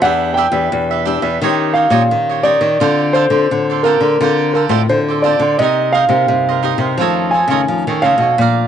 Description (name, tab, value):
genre	samba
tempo	86 BPM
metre	4/4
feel	straight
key	unclear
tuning	A4 = 440 Hz
part	warm concert grand piano	melody	0.0-8.7 s	Bb4 to G#5	-15 LUFS	right 2 dB	none
part	cavaquinho	accompaniment	0.0-8.7 s	D4 to Bb5	-20 LUFS	right 10 dB	none
part	nylon-string guitar	accompaniment	0.0-8.7 s	F2 to C5	-22 LUFS	left 15 dB	none
part	nylon-string guitar	bass	0.0-8.7 s	E2 to F3	-17 LUFS	left 2 dB	none
room	light reverb, studio ambience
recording	1960s-style stereo with parts hard left and right, nothing above 10.9 kHz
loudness	-12 LUFS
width	side -9 dB against mid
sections	0.0-8.7 A section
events	none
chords	0.0 Em7; 1.4 Eb13; 2.8 Dm7; 5.6 Cm7; 7.0 F7alt